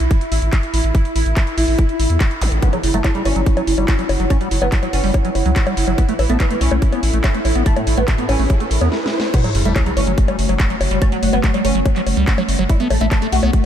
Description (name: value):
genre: psychedelic trance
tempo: 143 BPM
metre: 4/4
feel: straight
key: F# minor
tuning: A4 = 439 Hz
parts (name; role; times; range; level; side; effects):
- pulsing gated texture; sustained chords; 0.0-13.7 s; A3 to E4; -23 LUFS; right 1 dB; chorus, built-in reverb, sidechain pumping
- round analog bass; bass; 0.0-13.5 s; F#1 to E2; -18 LUFS; equal; none
- techno drum kit; drums; 0.0-13.6 s; bongos, crash cymbal, handclaps, hi-hat, snare drum; -24 LUFS; left 2 dB; none
- warbly tape-like pad; texture; 0.4-13.7 s; A3 to F#5; -30 LUFS; right 1 dB; chorus, built-in reverb, sidechain pumping
- electronic kick drum; drums; 0.1-13.6 s; none; -16 LUFS; equal; none
- zap, riser and sub drop; sound effects; 2.4-2.5, 7.3-11.0 s; none; -27 LUFS; equal; none
- oud; melody; 2.6-13.7 s; A2 to F#4; -25 LUFS; equal; phaser, sidechain pumping, diffuse ambient delay
- liquid acid bass; riff; 2.7-13.5 s; F#3 to B3; -24 LUFS; moving between left 5 dB and right 6 dB; phaser, auto-pan, sidechain pumping, analog delay
room: light reverb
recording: none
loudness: -14 LUFS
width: side -10 dB against mid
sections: 0.0-9.3 A section; 9.3-13.7 B section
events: fade-in on ambient pad 0.0-9.3; riser 7.3-9.3; break 8.9-9.3; drum fill 8.9-9.3; drop 9.3-13.7; impact 9.3-11.0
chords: 0.0 A5; 2.6 F#5; 6.0 A5; 9.3 F#5; 12.7 A5